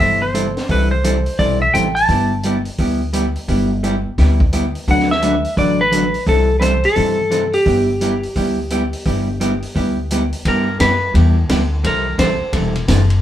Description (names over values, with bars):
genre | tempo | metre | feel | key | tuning
country, western swing | 172 BPM | 4/4 | swing 63% on 8ths | G major | A4 = 440 Hz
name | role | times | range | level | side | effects
clean lap steel guitar | melody | 0.0-2.6, 4.9-12.5 s | G4 to A5 | -18 LUFS | equal | none
vintage hollow-body jazz guitar | accompaniment | 0.0-13.0 s | C3 to B4 | -19 LUFS | equal | none
upright bass | bass | 0.0-13.2 s | E1 to G2 | -18 LUFS | equal | none
vintage drum kit | drums | 0.0-13.2 s | hi-hat, kick drum, ride cymbal, snare drum | -23 LUFS | equal | none
room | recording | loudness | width
moderate studio reverb, RT60 0.5 s | band playing live in one room | -14 LUFS | side -12 dB against mid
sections
0.0-10.4 A section; 10.4-13.2 B section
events
electric slide guitar solo 10.4-13.2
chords
0.0 C6; 2.1 G6; 4.9 D6; 6.3 C6; 7.7 G6; 11.8 C6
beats
0.00 0.34 | 0.69 1.04 1.39 1.74 | 2.09 2.44 2.79 3.14 | 3.49 3.83 4.18 4.53 | 4.88 5.23 5.58 5.93 | 6.27 6.62 6.97 7.32 | 7.67 8.01 8.36 8.71 | 9.06 9.41 9.75 10.10 | 10.45 10.80 11.14 11.49 | 11.84 12.19 12.54 12.88